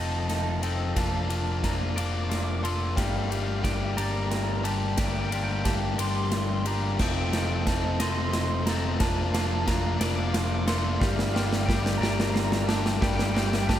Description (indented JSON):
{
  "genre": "post-rock",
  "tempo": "60 BPM (dotted quarters)",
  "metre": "6/8",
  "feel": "straight",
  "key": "G minor",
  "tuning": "A4 = 440 Hz",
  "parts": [
    { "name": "electric guitar through a small old amp", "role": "melody", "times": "0.0-13.8 s", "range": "F5 to D6", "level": "-34 LUFS", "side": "right 3 dB", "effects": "slapback echo, tape echo" },
    { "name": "twangy electric guitar", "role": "arpeggios", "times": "0.0-13.8 s", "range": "F3 to Eb5", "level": "-37 LUFS", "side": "equal", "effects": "lush chorus, slapback echo, tape echo" },
    { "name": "overdriven semi-hollow guitar", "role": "riff", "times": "0.0-13.8 s", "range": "F3 to A4", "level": "-30 LUFS", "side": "left 5 dB", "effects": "slapback echo" },
    { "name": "overdriven picked electric bass", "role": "bass", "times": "0.0-13.8 s", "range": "F1 to G1", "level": "-29 LUFS", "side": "equal", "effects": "none" },
    { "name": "big rock drum kit", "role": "drums", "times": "0.3-13.8 s", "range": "crash cymbal, kick drum, ride cymbal, snare drum", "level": "-29 LUFS", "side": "right 1 dB", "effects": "none" }
  ],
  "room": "light reverb, studio ambience",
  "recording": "none",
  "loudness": "-24 LUFS",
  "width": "side -11 dB against mid",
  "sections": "0.0-13.8 A section",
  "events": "build-up 0.0-13.8; drum fill 0.0-13.8",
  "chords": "0.0 F7; 1.0 Bbmaj7/F; 3.0 Gm7; 7.0 F7; 9.0 Bbmaj7/F; 11.0 Gm7",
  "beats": "| 0.96 1.97 | 2.97 3.98 | 4.99 5.99 | 7.00 8.00 | 9.01 10.01 | 11.01 12.02 | 13.02"
}